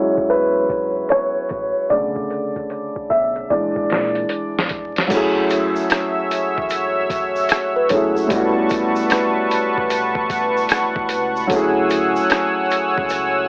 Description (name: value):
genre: lo-fi hip hop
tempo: 75 BPM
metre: 4/4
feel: swing 64% on 16ths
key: F# minor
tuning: A4 = 440 Hz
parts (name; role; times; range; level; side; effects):
- warm upright piano; accompaniment; 0.0-13.5 s; A2 to E5; -19 LUFS; equal; low-pass filter
- sub bass with octave; bass; 0.0-13.5 s; E1 to A#2; -38 LUFS; equal; none
- lo-fi sampler-style drum kit; drums; 0.2-13.3 s; crash cymbal, hi-hat, kick drum, rim click, snare drum; -21 LUFS; equal; none
- warm analog pad; sustained chords; 5.1-13.5 s; B4 to E6; -19 LUFS; equal; chorus, tremolo, low-pass filter
- egg shaker; percussion; 5.1-13.3 s; none; -40 LUFS; equal; none
- mellow tine electric piano; second line; 7.8-8.5 s; A4 to C#5; -22 LUFS; equal; low-pass filter, tape echo
room: light reverb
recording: dry, gritty hardware recording, vinyl crackle, low-pass filter, AM radio sound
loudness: -16 LUFS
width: side -40 dB against mid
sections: 0.0-5.1 A section; 5.1-13.5 B section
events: upright piano solo 0.0-5.1; filter sweep 0.0-5.1; drum fill 1.9-5.1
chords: 0.0 Dmaj9#11 (rootless); 1.9 Bm7; 3.5 A#7#11; 5.1 F#m7; 8.3 A13; 11.5 Dmaj9#11